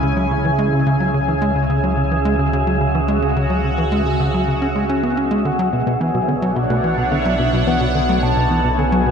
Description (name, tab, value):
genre	ambient, sequencer-driven space music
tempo	108 BPM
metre	4/4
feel	straight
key	unclear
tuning	A4 = 441 Hz
part	sweeping resonant pad	sustained chords	0.0-9.1 s	B2 to G#5	-20 LUFS	right 2 dB	chorus
part	tight sequencer bass	riff	0.0-9.1 s	B2 to C#4	-20 LUFS	equal	tape echo
part	analog drone	bass	0.0-9.1 s	B1 to C#2	-23 LUFS	equal	chorus
part	wind-like tuned noise texture	texture	0.0-9.1 s	E5	-30 LUFS	right 1 dB	built-in reverb
part	soft octave-layered synth lead	melody	5.4-9.1 s	E5 to A5	-22 LUFS	left 1 dB	chorus, tape echo
part	thumb-piano-like synth pluck	arpeggios	5.7-9.1 s	F#3 to B4	-24 LUFS	moving between left 9 dB and right 1 dB	chorus, auto-pan, tape echo
room	moderate plate reverb, RT60 2.5 s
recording	dark, warm production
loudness	-15 LUFS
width	side -7 dB against mid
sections	0.0-9.1 A section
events	none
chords	0.0 C#m; 5.5 Bmadd9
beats	0.45 | 1.00 1.56 2.12 2.67 | 3.23 3.78 4.34 4.89 | 5.45 6.00 6.56 7.12 | 7.67 8.23 8.78